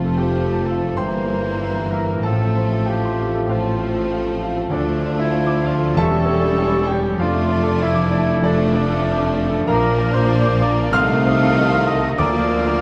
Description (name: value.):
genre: classical, romantic movement for piano and orchestra.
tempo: 96 BPM.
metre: 4/4.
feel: rubato.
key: F major.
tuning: A4 = 440 Hz.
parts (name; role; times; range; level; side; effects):
clear concert grand piano; melody; 0.0-12.8 s; Bb1 to F6; -24 LUFS; equal; none.
warm studio violin section; melody; 0.0-12.8 s; Bb3 to Eb4; -35 LUFS; equal; none.
clear symphonic violin section; second line; 0.0-12.8 s; G3 to Bb3; -33 LUFS; equal; none.
mellow hollow large flute ensemble; second line; 0.0-12.8 s; A5 to F6; -35 LUFS; equal; none.
warm clarinet; second line; 0.0-12.8 s; D4 to F5; -30 LUFS; equal; none.
warm oboe; second line; 0.0-12.8 s; D4 to F5; -33 LUFS; equal; none.
clear studio viola section; accompaniment; 0.0-12.8 s; Eb3 to G3; -31 LUFS; equal; none.
mellow bassoon; accompaniment; 0.0-12.8 s; E3 to Bb3; -31 LUFS; equal; none.
dark French horn section; sustained chords; 0.0-12.8 s; G3 to F4; -29 LUFS; equal; none.
dark symphonic cello section; bass; 0.0-12.8 s; D2 to D3; -27 LUFS; equal; none.
rich symphonic double bass section; bass; 0.0-12.8 s; E1 to D2; -28 LUFS; equal; none.
warm tuba; bass; 0.0-12.8 s; E1 to D2; -29 LUFS; equal; none.
timpani; percussion; 0.0-0.6 s; F2; -38 LUFS; equal; none.
room: wet scoring stage reverb, RT60 2.0 s.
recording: dark, warm production.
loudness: -19 LUFS.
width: mono.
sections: 0.0-12.8 A section.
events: none.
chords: 0.0 F; 1.0 Edim/G; 2.2 F/A; 4.7 Dm; 6.0 C#dim/E; 7.2 Dm/F; 9.7 Bb; 10.9 Adim/C; 12.2 Bb/D.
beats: 0.35 0.98 1.60 | 2.24 2.88 3.50 4.12 | 4.73 5.35 6.00 6.61 | 7.21 7.83 8.45 9.06 | 9.68 10.31 10.94 11.56 | 12.19 12.80.